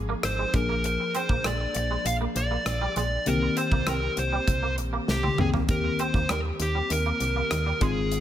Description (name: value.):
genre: 1980s-style pop.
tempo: 99 BPM.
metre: 4/4.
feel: straight.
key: Eb major.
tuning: A4 = 440 Hz.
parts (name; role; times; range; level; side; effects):
mellow FM electric piano; accompaniment; 0.0-8.2 s; D3 to G5; -31 LUFS; left 4 dB; chorus.
solid FM bass; bass; 0.0-8.2 s; Ab1 to Eb2; -29 LUFS; equal; none.
twangy electric guitar; riff; 0.1-7.9 s; G3 to C4; -35 LUFS; right 5 dB; ensemble chorus, digital delay, shimmer reverb.
dark smooth lead guitar; melody; 0.2-8.2 s; G4 to F5; -28 LUFS; right 1 dB; overdrive, digital delay, shimmer reverb.
modern studio drum kit; drums; 0.2-8.2 s; hi-hat, kick drum, rim click, snare drum, toms; -29 LUFS; equal; gated reverb.
room: light reverb, small room reverb.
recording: none.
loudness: -23 LUFS.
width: side -11 dB against mid.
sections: 0.0-8.2 A section.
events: drum fill 5.1-5.7.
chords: 0.0 Ab6; 0.5 Bb7; 3.3 Cm7; 5.7 Eb6.